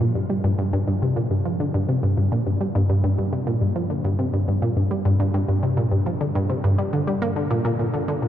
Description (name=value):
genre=ambient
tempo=104 BPM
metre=4/4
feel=straight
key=G minor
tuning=A4 = 441 Hz
part: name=resonant blip pluck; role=solo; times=0.0-8.3 s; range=G2 to Bb3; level=-20 LUFS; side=equal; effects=chorus, tape echo
room=wet huge ambient reverb, RT60 9.3 s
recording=dark, warm production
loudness=-20 LUFS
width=side -11 dB against mid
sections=0.0-8.3 A section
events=none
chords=none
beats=0.01 | 0.58 1.16 1.74 2.32 | 2.89 3.47 4.05 4.62 | 5.20 5.78 6.35 6.93 | 7.51 8.09